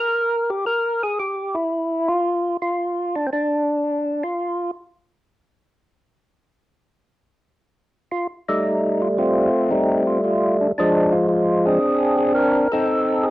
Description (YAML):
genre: jazz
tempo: 113 BPM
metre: 4/4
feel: swing 69% on 8ths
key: F mixolydian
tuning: A4 = 440 Hz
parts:
  - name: percussive tonewheel organ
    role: solo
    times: 0.0-4.7, 8.1-13.3 s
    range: F3 to Bb4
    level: -18 LUFS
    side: equal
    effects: slow rotary speaker, overdrive, cassette tape
room: moderate studio reverb, RT60 0.6 s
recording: home recording on cassette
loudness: -18 LUFS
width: side -16 dB against mid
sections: 0.0-8.6 A section; 8.6-13.3 A section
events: none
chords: 0.0 N.C.; 6.5 F9/G; 8.6 Fadd9; 10.7 Fm6